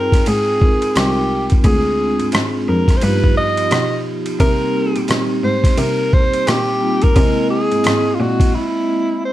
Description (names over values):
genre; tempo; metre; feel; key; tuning
hip hop, jazz-hop; 87 BPM; 4/4; swing 62% on 16ths; unclear; A4 = 441 Hz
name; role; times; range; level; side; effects
breathy alto saxophone; melody; 0.0-9.3 s; E4 to Eb5; -18 LUFS; equal; slapback echo
vibraphone with medium hard mallets; accompaniment; 0.0-9.3 s; F3 to G5; -20 LUFS; equal; none
clear cello; bass; 0.0-8.5 s; C2 to C3; -22 LUFS; equal; none
boom bap sampler-style drum kit; drums; 0.1-8.5 s; hi-hat, kick drum, ride cymbal, rim click; -17 LUFS; equal; none
room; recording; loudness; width
light reverb; dark, warm production; -13 LUFS; side -14 dB against mid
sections
0.0-9.3 A section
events
break 8.5-9.3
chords
0.0 Fm9; 1.6 Dm7b5; 3.0 G7b13; 4.4 Cm7; 7.2 C7alt